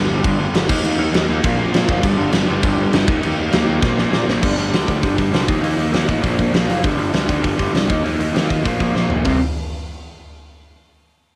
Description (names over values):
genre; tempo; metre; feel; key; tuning
punk rock; 200 BPM; 4/4; straight; unclear; A4 = 441 Hz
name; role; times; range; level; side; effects
crunchy overdriven guitar; riff; 0.0-9.4 s; G2 to Eb4; -22 LUFS; equal; none
fuzz picked electric bass; bass; 0.0-9.4 s; F1 to Bb2; -25 LUFS; equal; overdrive
big rock drum kit; drums; 0.2-9.3 s; crash cymbal, hi-hat, kick drum, snare drum, toms; -22 LUFS; equal; cassette tape
room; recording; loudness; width
studio ambience; home recording on cassette; -18 LUFS; mono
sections
0.0-4.4 A section; 4.4-9.2 B section; 9.2-10.5 C section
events
drum fill 3.8-4.4, 8.9-9.2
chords
0.0 G5; 0.7 Eb5; 1.4 Bb5; 2.0 G5; 3.1 Eb5; 3.8 Bb5; 4.4 G5; 5.5 Eb5; 6.2 Bb5; 6.8 G5; 7.9 Eb5; 8.6 Bb5; 9.2 C5